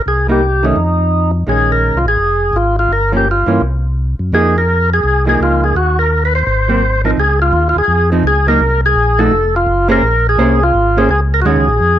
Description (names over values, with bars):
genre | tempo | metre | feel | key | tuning
soul jazz organ trio | 168 BPM | 4/4 | swing 62% on 8ths | F minor | A4 = 438 Hz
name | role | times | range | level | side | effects
percussive tonewheel organ | melody | 0.0-12.0 s | Eb4 to C5 | -14 LUFS | equal | slow rotary speaker, overdrive, plate reverb
mellow tonewheel organ | bass | 0.1-12.0 s | F1 to G2 | -15 LUFS | equal | overdrive, chorus vibrato, slow rotary speaker
vintage hollow-body jazz guitar | accompaniment | 0.3-11.7 s | Eb3 to C5 | -16 LUFS | right 2 dB | none
room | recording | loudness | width
moderate club reverb, RT60 0.7 s | none | -11 LUFS | side -11 dB against mid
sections
0.0-7.2 A section; 7.2-12.0 B section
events
none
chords
0.0 Cm7; 0.8 Ebsus2/F; 1.5 Bbm11; 2.9 Gm7b5; 3.6 N.C.; 4.3 Fm7; 5.8 Eb5; 6.5 Ab9; 7.2 Dbadd9; 8.6 Cm7b5; 9.3 F5; 10.0 Bbm9; 11.5 Ebm11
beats
| 0.05 0.41 0.76 1.12 | 1.48 1.83 2.19 2.55 | 2.91 3.26 3.62 3.98 | 4.33 4.69 5.04 5.40 | 5.76 6.11 6.47 6.83 | 7.18 7.54 7.89 8.25 | 8.61 8.96 9.32 9.67 | 10.03 10.38 10.74 11.10 | 11.45 11.81